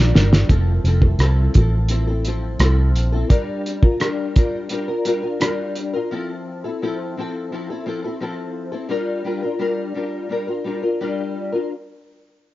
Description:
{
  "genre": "indie pop, bedroom pop",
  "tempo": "86 BPM",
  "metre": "4/4",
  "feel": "straight",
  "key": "G dorian",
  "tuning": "A4 = 440 Hz",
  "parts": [
    { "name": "nylon-string guitar", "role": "accompaniment", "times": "0.0-11.7 s", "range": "F3 to Bb4", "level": "-23 LUFS", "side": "left 2 dB", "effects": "ensemble chorus, warbly pitch drift" },
    { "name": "ethereal airy pad", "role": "sustained chords", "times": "0.0-0.5 s", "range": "G3 to Bb4", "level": "-34 LUFS", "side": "right 1 dB", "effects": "none" },
    { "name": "vintage muted fingered electric bass", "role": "bass", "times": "0.0-3.2 s", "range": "F1 to C2", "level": "-16 LUFS", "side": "equal", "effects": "none" },
    { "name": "cloth-damped thuddy drum kit", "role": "drums", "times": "0.2-5.9 s", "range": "hi-hat, kick drum, rim click, snare drum", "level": "-17 LUFS", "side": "equal", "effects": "none" }
  ],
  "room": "light reverb, small room ambience",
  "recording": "dark, warm production, nothing above 7.4 kHz",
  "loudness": "-18 LUFS",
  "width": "side -16 dB against mid",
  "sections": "0.5-11.7 A section",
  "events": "drum fill 0.0-0.5",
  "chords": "0.5 Fmaj7; 3.3 Gm7; 6.1 Fmaj7; 8.9 Gm7",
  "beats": "| 0.50 1.20 1.90 2.60 | 3.30 4.00 4.70 5.40 | 6.10 6.80 7.50 8.20 | 8.90 9.60 10.30 11.00"
}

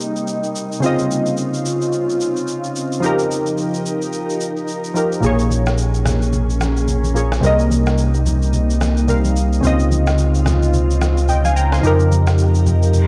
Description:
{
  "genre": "amapiano",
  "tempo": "109 BPM",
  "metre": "4/4",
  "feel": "swing 58% on 16ths",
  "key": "unclear",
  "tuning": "A4 = 439 Hz",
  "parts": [
    { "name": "glassy digital keys", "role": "accompaniment", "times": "0.0-13.1 s", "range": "Bb2 to C6", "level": "-23 LUFS", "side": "equal", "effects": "chorus, cassette tape" },
    { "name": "glassy FM pad", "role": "sustained chords", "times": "0.0-13.1 s", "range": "C3 to Bb4", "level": "-24 LUFS", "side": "equal", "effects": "ensemble chorus, built-in reverb, cassette tape" },
    { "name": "electronic shaker and rim click", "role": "drums", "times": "0.0-13.1 s", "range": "none", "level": "-31 LUFS", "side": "equal", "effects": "cassette tape" },
    { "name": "sub bass with octave", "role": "bass", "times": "5.2-13.1 s", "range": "Bb1 to F2", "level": "-19 LUFS", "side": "equal", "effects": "none" },
    { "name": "congas", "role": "percussion", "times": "5.2-13.1 s", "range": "none", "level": "-28 LUFS", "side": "equal", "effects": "none" },
    { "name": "reverse cymbal", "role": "sound effects", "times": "13.0-13.1 s", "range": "none", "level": "-34 LUFS", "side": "equal", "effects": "none" }
  ],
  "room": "light reverb",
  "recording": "home recording on cassette",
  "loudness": "-17 LUFS",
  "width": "mono",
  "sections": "0.0-13.1 A section",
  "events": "none",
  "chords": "0.0 Cm7; 0.8 Dbmaj9; 3.0 F9sus4; 5.2 Bbm7; 7.4 Cm7; 9.6 Dbmaj9; 11.8 F9sus4",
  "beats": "0.28 | 0.83 1.38 1.93 2.48 | 3.03 3.58 4.13 4.68 | 5.23 5.78 6.33 6.88 | 7.43 7.98 8.53 9.08 | 9.63 10.19 10.73 11.29 | 11.84 12.39 12.94"
}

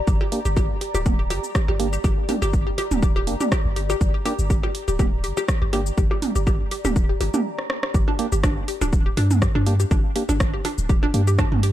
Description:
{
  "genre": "minimal techno",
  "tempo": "122 BPM",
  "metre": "4/4",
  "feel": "swing 54% on 16ths",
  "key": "G minor",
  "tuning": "A4 = 439 Hz",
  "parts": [
    { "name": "ethereal airy pad", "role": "texture", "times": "0.0-7.5 s", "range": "G4 to Bb5", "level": "-32 LUFS", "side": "left 1 dB", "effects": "ensemble chorus, built-in reverb, phaser, sidechain pumping" },
    { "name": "hollow square pluck", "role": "riff", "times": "0.1-11.7 s", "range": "D4 to G4", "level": "-28 LUFS", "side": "left 1 dB", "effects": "analog chorus, sidechain pumping, dub echo" },
    { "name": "punchy sub bass", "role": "bass", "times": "0.1-11.7 s", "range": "D1 to G2", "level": "-23 LUFS", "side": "equal", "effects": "sidechain pumping" },
    { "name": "electronic kick drum", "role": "drums", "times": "0.1-11.5 s", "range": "none", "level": "-21 LUFS", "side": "equal", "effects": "overdrive" },
    { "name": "house drum kit", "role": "drums", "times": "0.1-11.7 s", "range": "hi-hat, rim click, shaker", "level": "-30 LUFS", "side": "equal", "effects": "overdrive" },
    { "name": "electronic percussion blips and toms", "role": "percussion", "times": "0.2-11.6 s", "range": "none", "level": "-28 LUFS", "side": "right 3 dB", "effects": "tape echo" },
    { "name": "percussive organ stab", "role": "stabs", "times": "0.3-11.2 s", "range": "Bb3 to G4", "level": "-30 LUFS", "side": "right 2 dB", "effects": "chorus, cassette tape, tape echo" }
  ],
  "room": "little or no reverb",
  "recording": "dark, warm production",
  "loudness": "-19 LUFS",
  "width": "side -13 dB against mid",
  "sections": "0.0-7.9 A section; 7.9-11.7 B section",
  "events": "filter sweep on synth stab 0.0-7.9; stop 7.5-7.9; drum fill 7.6-7.9; drop 7.9-11.7",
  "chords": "0.0 Gm",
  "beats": "| 0.07 0.57 1.06 1.55 | 2.04 2.53 3.02 3.52 | 4.01 4.50 4.99 5.49 | 5.98 6.47 6.96 7.45 | 7.94 8.44 8.93 9.42 | 9.91 10.40 10.89 11.39"
}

